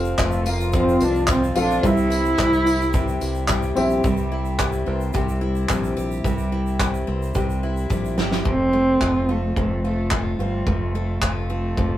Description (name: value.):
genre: acoustic pop.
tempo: 109 BPM.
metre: 4/4.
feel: straight.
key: F major.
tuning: A4 = 440 Hz.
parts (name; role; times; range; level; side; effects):
dark upright piano; accompaniment; 0.0-4.1 s; C4 to F5; -25 LUFS; left 1 dB; none.
picked twelve-string acoustic guitar; accompaniment; 0.0-12.0 s; F2 to G4; -28 LUFS; left 4 dB; none.
nylon-string guitar; arpeggios; 0.0-12.0 s; F3 to A4; -29 LUFS; right 2 dB; none.
modern bright fingered electric bass; bass; 0.0-12.0 s; F1 to C2; -25 LUFS; equal; none.
egg shaker; percussion; 0.0-8.5 s; none; -44 LUFS; right 6 dB; none.
dark cello; melody; 0.2-3.5, 8.5-12.0 s; G3 to E4; -22 LUFS; right 1 dB; none.
loose indie drum kit; drums; 0.2-11.9 s; handclaps, kick drum, snare drum, tambourine; -24 LUFS; equal; none.
room: light reverb.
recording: rough rehearsal-room recording.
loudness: -19 LUFS.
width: side -13 dB against mid.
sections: 0.0-4.0 A section; 4.0-8.5 B section; 8.5-12.0 C section.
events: drum fill 7.9-8.5.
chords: 0.0 F; 1.8 C; 8.5 F.